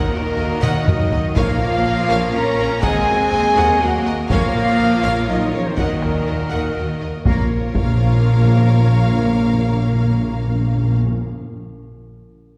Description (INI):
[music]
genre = cinematic, epic orchestral film score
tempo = 122 BPM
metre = 3/4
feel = straight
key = Bb minor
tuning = A4 = 440 Hz
[part]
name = warm symphonic violin section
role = melody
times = 0.0-11.0 s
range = Bb4 to Gb5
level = -34 LUFS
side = equal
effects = none
[part]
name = mellow hollow concert flute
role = second line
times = 0.0-11.0 s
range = Bb4 to Bb5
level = -32 LUFS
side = equal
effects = none
[part]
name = warm symphonic violin section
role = second line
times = 0.0-11.0 s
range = Bb4 to Bb5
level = -33 LUFS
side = equal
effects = none
[part]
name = dark symphonic viola section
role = accompaniment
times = 0.0-11.0 s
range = F4 to Eb5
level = -32 LUFS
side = equal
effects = none
[part]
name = mellow French horn section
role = sustained chords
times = 0.0-10.7 s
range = Bb3 to Bb4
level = -29 LUFS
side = equal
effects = none
[part]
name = rich symphonic string section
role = sustained chords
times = 0.0-10.7 s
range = Bb3 to Eb5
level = -31 LUFS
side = equal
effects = none
[part]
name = warm trombone section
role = sustained chords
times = 0.0-10.7 s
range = Bb2 to Bb3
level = -31 LUFS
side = equal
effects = none
[part]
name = dark trumpet section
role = stabs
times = 0.0-11.0 s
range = Bb4 to Bb5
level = -27 LUFS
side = equal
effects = none
[part]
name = clear symphonic cello section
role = bass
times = 0.0-11.0 s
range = Eb3 to Db4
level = -27 LUFS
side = equal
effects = none
[part]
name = warm symphonic double bass section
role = bass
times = 0.1-11.0 s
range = Bb1 to Eb2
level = -24 LUFS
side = equal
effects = none
[part]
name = taiko ensemble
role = drums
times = 0.6-8.2 s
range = none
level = -24 LUFS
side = equal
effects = none
[part]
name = timpani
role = percussion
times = 1.4-2.1, 4.3-5.0, 7.3-11.2 s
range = Bb2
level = -22 LUFS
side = equal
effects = none
[sound]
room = wet concert hall reverb, RT60 2.0 s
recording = heard from further back in the room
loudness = -17 LUFS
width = mono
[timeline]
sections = 0.0-7.3 A section; 7.3-10.2 B section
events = drum fill 0.6-1.4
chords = 0.0 Ebm; 1.4 Bbm; 2.8 Ebm; 4.3 Bbm; 5.8 Ebm; 7.3 Bbm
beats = 0.38 0.87 | 1.36 1.86 2.35 | 2.84 3.33 3.82 | 4.31 4.80 5.29 | 5.78 6.28 6.76 | 7.26 7.75 8.24 | 8.73 9.22 9.71